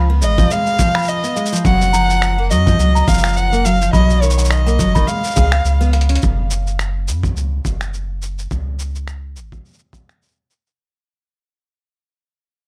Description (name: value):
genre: folktronica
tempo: 105 BPM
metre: 4/4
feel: swing 56% on 16ths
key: F# major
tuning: A4 = 439 Hz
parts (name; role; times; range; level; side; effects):
- music box; second line; 0.0-6.1 s; E#5 to B5; -29 LUFS; equal; digital delay
- picked steel-string acoustic guitar; arpeggios; 0.0-6.2 s; D#3 to G#4; -23 LUFS; equal; none
- warm sub bass; bass; 0.0-9.6 s; F#1 to F#2; -19 LUFS; equal; none
- dark violin; melody; 0.2-5.9 s; C#5 to F#5; -22 LUFS; equal; digital delay
- lo-fi sampler-style drum kit; drums; 0.2-10.8 s; cabasa, finger snaps, hi-hat; -26 LUFS; equal; none
- kick drum; drums; 0.4-10.1 s; none; -21 LUFS; equal; none
room: light reverb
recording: none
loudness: -16 LUFS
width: mono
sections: 0.0-6.2 A section; 6.2-10.8 B section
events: drum fill 5.9; fade-out 6.2-10.8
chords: 0.0 C#7; 1.6 F#maj7(no3); 3.9 B; 5.1 C#7; 6.2 F#5; 8.5 C#5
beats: 0.50 1.08 | 1.65 2.22 2.79 3.36 | 3.93 4.50 5.08 5.65 | 6.22 6.79 7.36 7.93 | 8.50 9.08 9.65 10.22